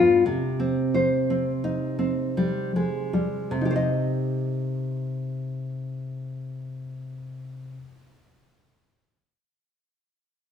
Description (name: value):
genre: romantic piece for solo classical guitar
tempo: 56 BPM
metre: 3/4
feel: rubato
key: C minor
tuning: A4 = 441 Hz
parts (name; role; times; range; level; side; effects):
- nylon-string guitar; solo; 0.0-8.0 s; G2 to Eb5; -24 LUFS; left 1 dB; none
room: wet recital hall reverb, RT60 1.4 s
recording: recorded in a church or concert hall, small room ambience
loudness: -24 LUFS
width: side -8 dB against mid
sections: 0.0-3.5 A section; 3.5-6.7 B section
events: slowing down 0.0-3.5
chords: 0.3 Cm